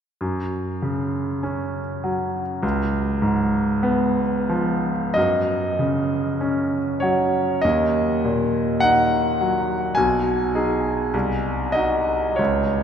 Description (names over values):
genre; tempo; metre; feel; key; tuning
classical, romantic nocturne for solo piano; 43-52 BPM; 4/4; rubato; F# major; A4 = 440 Hz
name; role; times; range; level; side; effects
bright concert grand piano; solo; 0.2-12.8 s; B1 to G#5; -19 LUFS; equal; none
room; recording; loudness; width
wet cathedral reverb, RT60 6.8 s; recorded in a church or concert hall; -19 LUFS; side -8 dB against mid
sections
0.2-5.2 A section; 5.2-12.8 B section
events
none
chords
0.2 F#5; 2.6 C#7; 5.2 F#5; 7.6 D#m; 10.0 G#m/B; 11.1 G#7/B#